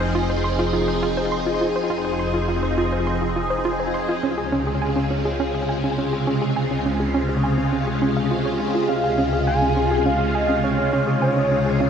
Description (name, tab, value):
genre	ambient, sequencer-driven space music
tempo	103 BPM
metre	4/4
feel	straight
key	unclear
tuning	A4 = 440 Hz
part	phased string machine	sustained chords	0.0-11.9 s	C3 to Ab4	-22 LUFS	equal	ensemble chorus, phaser
part	hollow square pluck	riff	0.0-11.9 s	Db4 to C6	-25 LUFS	equal	chorus, cassette tape, ping-pong delay
part	fat analog bass	bass	0.0-11.9 s	F1 to Db2	-28 LUFS	equal	none
part	bubbling stepped-filter texture	texture	0.0-11.9 s	C4 to Eb5	-39 LUFS	right 2 dB	none
part	pulse-width lead	melody	8.9-11.9 s	Db5 to Ab5	-23 LUFS	equal	chorus, ping-pong delay
room	wet huge ambient reverb, RT60 8.2 s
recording	dreamy mix soaked in reverb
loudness	-19 LUFS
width	side -7 dB against mid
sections	0.0-11.9 A section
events	none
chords	0.0 Fm7; 4.2 Dbmaj7